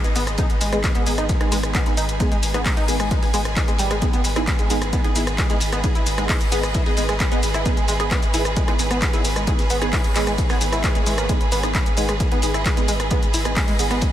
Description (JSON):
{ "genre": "driving peak-time techno", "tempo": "132 BPM", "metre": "4/4", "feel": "straight", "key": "G# minor", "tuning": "A4 = 439 Hz", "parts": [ { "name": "filtered dub chord stab", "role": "stabs", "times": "0.0-13.9 s", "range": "B3 to G#4", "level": "-28 LUFS", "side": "right 1 dB", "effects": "phaser, wide subtle chorus, cassette tape, sidechain pumping, analog delay" }, { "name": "saturated sub bass", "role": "bass", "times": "0.0-14.0 s", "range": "G#1", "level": "-26 LUFS", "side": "equal", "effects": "tube saturation, sidechain pumping, low-pass filter" }, { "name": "punchy analog drum machine", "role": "drums", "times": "0.0-14.1 s", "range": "handclaps, hi-hat, rim click, shaker", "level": "-26 LUFS", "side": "left 1 dB", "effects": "none" }, { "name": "clear studio string section", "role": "texture", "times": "0.0-14.1 s", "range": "G#4 to G#5", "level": "-28 LUFS", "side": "right 2 dB", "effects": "sidechain pumping" }, { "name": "tight sequenced synth", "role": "riff", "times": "0.2-14.0 s", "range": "G3 to E4", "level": "-27 LUFS", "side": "equal", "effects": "chorus, cassette tape, sidechain pumping, analog delay" }, { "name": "raw garage drum kit", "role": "drums", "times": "0.2-14.1 s", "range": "hi-hat, ride cymbal, snare drum", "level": "-37 LUFS", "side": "right 1 dB", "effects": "none" }, { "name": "electronic kick drum", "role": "drums", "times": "0.4-14.1 s", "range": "none", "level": "-21 LUFS", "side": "equal", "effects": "none" } ], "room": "moderate huge ambient reverb, RT60 6.9 s", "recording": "dreamy mix soaked in reverb", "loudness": "-18 LUFS", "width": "side -12 dB against mid", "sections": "0.0-14.1 A section", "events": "none", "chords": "0.0 G#m" }